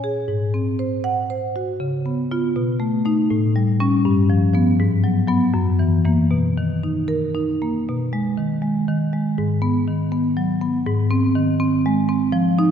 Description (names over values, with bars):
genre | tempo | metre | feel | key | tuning
classical, contemporary piece for solo marimba | 80 BPM (dotted quarters) | 6/8 | rubato | B lydian | A4 = 440 Hz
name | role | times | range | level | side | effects
marimba with medium mallets | solo | 0.0-12.7 s | F#2 to Gb5 | -18 LUFS | equal | none
room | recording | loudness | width
wet concert hall reverb, RT60 1.8 s | dark, warm production | -18 LUFS | side -8 dB against mid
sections
0.0-7.9 A section; 7.9-12.7 B section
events
none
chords
0.3 Ab7; 1.8 C#7; 2.6 B7; 3.3 A7; 4.0 G7; 4.8 G#m7; 5.5 F#7; 6.3 Bmaj7; 7.9 B6; 9.4 G#m7; 10.9 G#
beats
| 0.28 1.06 | 1.82 2.56 | 3.31 4.05 | 4.78 5.53 | 6.30 7.09 | 7.88 8.63 | 9.37 10.12 | 10.85 11.59 | 12.32